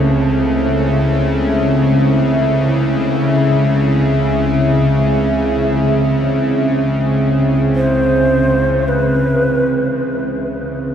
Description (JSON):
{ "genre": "dark ambient drone", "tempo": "free time", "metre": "none", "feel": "none", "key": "unclear", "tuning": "A4 = 439 Hz", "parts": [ { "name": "deep dark ambient pad", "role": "sustained chords", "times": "0.0-10.9 s", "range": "C4 to E5", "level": "-17 LUFS", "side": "right 1 dB", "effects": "chorus, built-in reverb" }, { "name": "bowed-like drone", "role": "drone", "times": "0.0-10.9 s", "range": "C#2 to C#3", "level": "-15 LUFS", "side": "left 1 dB", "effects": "built-in reverb" }, { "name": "wind-like tuned noise texture", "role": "texture", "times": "0.0-8.9 s", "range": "A3", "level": "-31 LUFS", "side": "right 3 dB", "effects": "none" }, { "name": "mellow hollow shakuhachi", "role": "melody", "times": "7.8-10.5 s", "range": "B4 to C5", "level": "-19 LUFS", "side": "right 1 dB", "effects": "diffuse ambient delay" } ], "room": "wet huge ambient reverb, RT60 7.4 s", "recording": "in a vast, echoing space", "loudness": "-13 LUFS", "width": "side -8 dB against mid", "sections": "0.0-8.9 A section; 8.9-10.9 B section", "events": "none", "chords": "0.0 Am; 8.9 Am (rootless)", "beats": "free time" }